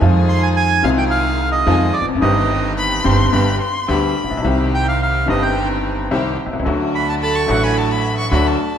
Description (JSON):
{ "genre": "tango", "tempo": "108 BPM", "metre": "4/4", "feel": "rubato", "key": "C harmonic minor", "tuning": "A4 = 441 Hz", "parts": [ { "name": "vibraphone with medium hard mallets", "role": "second line", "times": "0.0-0.1, 7.2-8.8 s", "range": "Ab4 to F#5", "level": "-25 LUFS", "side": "right 5 dB", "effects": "none" }, { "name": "warm violin", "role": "second line", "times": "0.0-8.8 s", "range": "Ab5 to Db6", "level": "-22 LUFS", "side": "left 2 dB", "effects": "none" }, { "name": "bright upright piano", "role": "accompaniment", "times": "0.0-8.6 s", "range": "G1 to G4", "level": "-19 LUFS", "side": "left 3 dB", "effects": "none" }, { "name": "warm chamber string section", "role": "stabs", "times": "0.0-8.6 s", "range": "A3 to Ab4", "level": "-26 LUFS", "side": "right 2 dB", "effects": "none" }, { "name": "upright bass", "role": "bass", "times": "0.0-8.6 s", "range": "E1 to F2", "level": "-19 LUFS", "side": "right 2 dB", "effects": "none" }, { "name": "bandoneon", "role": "melody", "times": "0.3-7.8 s", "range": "D5 to C6", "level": "-20 LUFS", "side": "right 3 dB", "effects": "none" } ], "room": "moderate scoring stage reverb, RT60 1.6 s", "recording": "minimal, uncompressed stereo recording", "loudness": "-14 LUFS", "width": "side -9 dB against mid", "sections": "0.0-8.8 A section", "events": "none", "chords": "0.0 Fm7; 2.2 Cm/G; 3.3 G; 4.5 Cm; 6.7 D" }